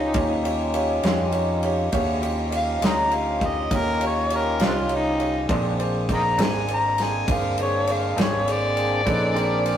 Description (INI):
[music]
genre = slow blues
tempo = 67 BPM (dotted quarters)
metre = 12/8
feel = straight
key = unclear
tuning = A4 = 440 Hz
[part]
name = overdriven harmonica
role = melody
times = 0.0-9.8 s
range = C4 to Bb5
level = -24 LUFS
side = equal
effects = none
[part]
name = bright upright piano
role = accompaniment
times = 0.0-9.8 s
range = G4 to F5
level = -29 LUFS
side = right 2 dB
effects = none
[part]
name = tonewheel organ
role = sustained chords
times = 0.0-9.8 s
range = Bb3 to Cb5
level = -27 LUFS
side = left 1 dB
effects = slow rotary speaker
[part]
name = fingered electric bass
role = bass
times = 0.0-9.8 s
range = G1 to F2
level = -28 LUFS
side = equal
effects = none
[part]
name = natural country drum kit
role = drums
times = 0.1-9.8 s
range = kick drum, ride cymbal, snare drum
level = -27 LUFS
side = equal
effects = none
[part]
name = electric guitar through a small old amp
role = accompaniment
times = 1.0-8.4 s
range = Bb2 to F4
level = -32 LUFS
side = left 1 dB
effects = none
[sound]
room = wet stone room reverb, RT60 1.4 s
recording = rough rehearsal-room recording, tube saturation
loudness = -20 LUFS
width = side -10 dB against mid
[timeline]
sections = 0.0-9.8 A section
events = harmonica solo 0.0-9.8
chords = 0.0 Eb9; 5.5 Bb9